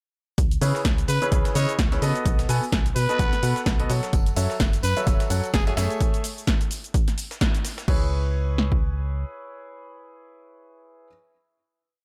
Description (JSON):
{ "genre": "piano house", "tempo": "128 BPM", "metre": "4/4", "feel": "swing 57% on 16ths", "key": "C# minor", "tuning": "A4 = 440 Hz", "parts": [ { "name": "organ-like FM bass", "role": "bass", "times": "0.4-9.2 s", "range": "F#1 to C#3", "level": "-27 LUFS", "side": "equal", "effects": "sidechain pumping" }, { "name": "breakbeat sampler-style drum kit", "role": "drums", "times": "0.4-7.9 s", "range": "hi-hat, snare drum", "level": "-40 LUFS", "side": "equal", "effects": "none" }, { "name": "punchy analog drum machine", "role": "drums", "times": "0.4-8.8 s", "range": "kick drum, snare drum", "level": "-25 LUFS", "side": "equal", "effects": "none" }, { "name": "punchy analog drum machine", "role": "drums", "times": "0.4-8.0 s", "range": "crash cymbal, hi-hat, shaker, snare drum", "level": "-33 LUFS", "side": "equal", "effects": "none" }, { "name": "clear baby grand piano", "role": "riff", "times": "0.6-11.1 s", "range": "C#3 to G#5", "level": "-32 LUFS", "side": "equal", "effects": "sidechain pumping, analog delay" }, { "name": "growling trumpet", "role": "melody", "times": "1.1-5.7 s", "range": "G#4 to C#5", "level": "-31 LUFS", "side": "equal", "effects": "analog delay" }, { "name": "tambourine", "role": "percussion", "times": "4.1-6.0 s", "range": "none", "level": "-45 LUFS", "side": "equal", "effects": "none" } ], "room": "light reverb, digital ambience", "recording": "echo-heavy mix", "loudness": "-23 LUFS", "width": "mono", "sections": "0.4-7.9 drop; 7.9-11.6 final chord", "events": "drop 0.4-7.9; band accent 7.4", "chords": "0.4 C#m7; 2.3 B7; 4.1 F#m7; 6.0 Amaj7; 7.9 C#m7" }